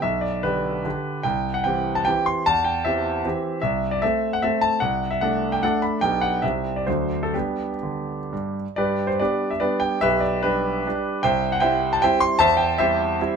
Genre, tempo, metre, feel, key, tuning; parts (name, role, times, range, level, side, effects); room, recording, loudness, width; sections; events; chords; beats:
classical, romantic triple-time dance for piano with dotted rhythms; 118-164 BPM; 3/4; rubato; G major; A4 = 440 Hz
clear concert grand piano; solo; 0.0-13.4 s; B1 to C6; -20 LUFS; equal
little or no reverb; close, detailed microphones; -20 LUFS; side -6 dB against mid
0.0-8.8 A section; 8.8-13.4 A section
0.0 G/B; 1.3 C; 2.5 C/E; 3.6 Am/C; 4.8 D5/C; 6.0 G/B; 6.4 C; 6.9 D7; 7.3 G; 10.0 G/B; 11.2 C; 12.4 C/E
| 0.02 0.43 0.85 | 1.25 1.66 2.07 | 2.46 2.85 3.25 | 3.63 4.02 4.42 | 4.81 5.22 5.63 | 6.02 6.43 6.87 | 7.34 7.83 8.32 | 8.77 9.20 9.61 | 10.01 10.43 10.85 | 11.24 11.62 12.02 | 12.40 12.78 13.19